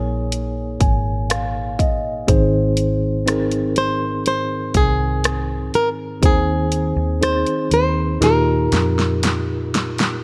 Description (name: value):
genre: pop ballad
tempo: 61 BPM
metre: 4/4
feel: straight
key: Ab major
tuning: A4 = 444 Hz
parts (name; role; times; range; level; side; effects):
- flamenco guitar; melody; 0.0-9.7 s; Ab4 to C5; -24 LUFS; equal; tape echo
- mellow tine electric piano; accompaniment; 0.0-10.2 s; Ab2 to Ab5; -23 LUFS; equal; none
- vintage muted fingered electric bass; bass; 0.0-10.2 s; Ab1 to F2; -25 LUFS; equal; none
- pop drum kit; drums; 0.3-10.2 s; hi-hat, kick drum, rim click, snare drum; -22 LUFS; equal; none
room: light reverb, digital ambience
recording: none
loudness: -19 LUFS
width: mono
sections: 0.0-10.2 A section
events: tine electric piano fill 0.3-2.3; drum fill 8.2-10.2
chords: 0.0 Ebsus4/Bb; 2.3 Ab; 6.2 Ab/Eb; 8.2 Ebadd9